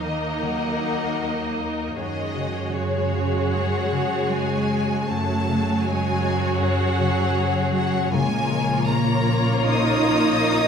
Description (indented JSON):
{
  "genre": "cinematic",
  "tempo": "78 BPM",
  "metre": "4/4",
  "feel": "rubato",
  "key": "unclear",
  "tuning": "A4 = 441 Hz",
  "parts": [
    { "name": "rich studio violin section", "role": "melody", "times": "0.0-10.7 s", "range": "Db5 to Eb6", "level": "-29 LUFS", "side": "left 3 dB", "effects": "none" },
    { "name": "warm symphonic violin section", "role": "second line", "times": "0.0-10.7 s", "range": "Ab4 to Eb5", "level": "-28 LUFS", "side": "left 1 dB", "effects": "none" },
    { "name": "clear symphonic viola section", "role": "accompaniment", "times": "0.0-10.7 s", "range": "Gb3 to Gb4", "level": "-27 LUFS", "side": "right 1 dB", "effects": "none" },
    { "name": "concert harp", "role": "arpeggios", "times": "0.0-10.7 s", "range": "Gb2 to Gb4", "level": "-28 LUFS", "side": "left 6 dB", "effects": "none" },
    { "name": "rich symphonic cello section", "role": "bass", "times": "0.0-10.7 s", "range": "Db3 to Eb4", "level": "-27 LUFS", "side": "right 2 dB", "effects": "none" },
    { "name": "warm symphonic double bass section", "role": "bass", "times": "0.0-10.7 s", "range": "Bb1 to Gb2", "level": "-27 LUFS", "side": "right 3 dB", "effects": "none" }
  ],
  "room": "wet scoring stage reverb, RT60 1.4 s",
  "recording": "minimal, uncompressed stereo recording",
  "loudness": "-20 LUFS",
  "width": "side -7 dB against mid",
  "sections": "0.0-10.7 A section",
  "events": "none",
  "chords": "0.0 Ebm; 2.0 Gbmadd9; 8.1 Bbm",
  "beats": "0.42 1.20 | 1.97 2.74 3.54 4.33 | 5.11 5.87 6.62 7.38 | 8.13 8.89 9.68 10.44"
}